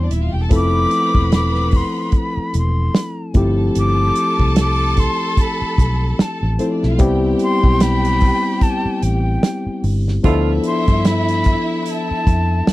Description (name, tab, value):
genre	lush 1970s-style soul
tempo	74 BPM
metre	4/4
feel	swing 58% on 16ths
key	unclear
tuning	A4 = 439 Hz
part	breathy jazz flute	melody	0.0-12.7 s	G5 to D6	-22 LUFS	left 1 dB	none
part	warm symphonic violin section	second line	0.0-12.7 s	B3 to B5	-27 LUFS	right 1 dB	none
part	barky tine electric piano	accompaniment	0.0-12.7 s	E3 to A4	-20 LUFS	left 2 dB	overdrive
part	vintage muted fingered electric bass	bass	0.0-12.7 s	Eb1 to G2	-18 LUFS	equal	none
part	warm soul drum kit	drums	0.1-12.7 s	hi-hat, kick drum, snare drum	-16 LUFS	equal	none
part	mellow horn section	stabs	10.2-10.5 s	B2 to F4	-22 LUFS	right 10 dB	none
room	little or no reverb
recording	dry, close 1970s-style studio recording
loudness	-14 LUFS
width	side -17 dB against mid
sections	0.0-12.7 A section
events	band accent 10.2-12.7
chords	0.0 Cmaj7; 0.5 Fmaj7; 3.4 G13sus4; 7.0 Cmaj7; 10.2 Dm69